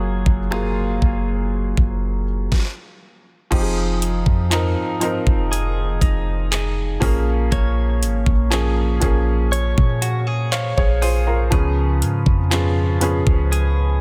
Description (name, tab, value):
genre	contemporary R&B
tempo	60 BPM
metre	4/4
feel	straight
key	F phrygian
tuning	A4 = 440 Hz
part	felt-muted upright piano	accompaniment	0.0-14.0 s	F3 to F5	-26 LUFS	equal	none
part	direct-recorded clean electric guitar	arpeggios	0.0-14.0 s	Db3 to Db5	-29 LUFS	equal	spring reverb, tape echo
part	clean 808-style bass	bass	0.0-14.0 s	F1 to Bb2	-22 LUFS	equal	none
part	smooth R&B drum kit	drums	0.3-13.8 s	crash cymbal, finger snaps, handclaps, hi-hat, kick drum, snare drum	-22 LUFS	equal	soft clipping on snare
room	digital ambience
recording	dense, heavily limited modern master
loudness	-19 LUFS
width	mono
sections	0.0-3.5 A section; 3.5-14.0 B section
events	stop 2.5-3.5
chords	0.0 Gbmaj9; 3.5 Fm7; 7.0 Bbm7; 11.5 Db7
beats	0.52 1.52 2.52 | 3.52 4.52 5.52 6.52 | 7.52 8.52 9.52 10.52 | 11.52 12.52 13.52